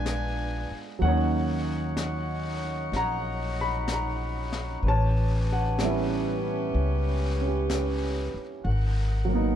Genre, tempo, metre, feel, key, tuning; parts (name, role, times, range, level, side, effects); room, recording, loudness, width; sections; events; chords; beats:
jazz; 63 BPM; 4/4; swing 68% on 8ths; A4 = 440 Hz
warm concert grand piano; accompaniment; 0.0-9.6 s; F#3 to B5; -30 LUFS; right 2 dB
mellow saxophone section; sustained chords; 0.0-9.6 s; C#4 to G#5; -34 LUFS; left 1 dB
upright bass; bass; 0.0-9.6 s; G#1 to D#2; -27 LUFS; left 1 dB
vintage brush drum kit; drums; 0.1-9.6 s; brushed snare drum, hi-hat, snare drum; -38 LUFS; left 3 dB
light reverb; dark, warm production; -25 LUFS; side -10 dB against mid
0.0-9.6 A section
0.0 A#7b9; 1.0 D#m7; 4.8 A9; 8.7 G#m9
0.07 | 1.02 1.98 2.93 3.89 | 4.84 5.79 6.75 7.70 | 8.65